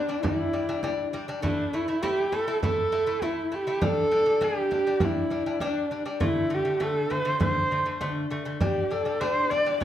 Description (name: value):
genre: mongolian traditional, Mongolian folk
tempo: 100 BPM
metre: 4/4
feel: straight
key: G zhi mode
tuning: A4 = 440 Hz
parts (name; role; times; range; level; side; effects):
- dark horsehead fiddle; melody; 0.0-9.8 s; D4 to D5; -25 LUFS; right 1 dB; none
- lute; arpeggios; 0.0-9.8 s; D3 to E4; -30 LUFS; left 3 dB; none
- frame drum; percussion; 0.2-9.8 s; none; -30 LUFS; right 1 dB; none
room: moderate recital hall reverb, RT60 1.3 s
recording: none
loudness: -24 LUFS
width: side -11 dB against mid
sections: 0.0-9.8 A section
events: none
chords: 0.0 G5; 1.4 A5; 3.8 G5; 6.2 D5; 8.6 G5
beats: 0.24 0.84 | 1.43 2.03 2.62 3.22 | 3.82 4.41 5.01 5.61 | 6.21 6.81 7.41 8.01 | 8.61 9.21 9.80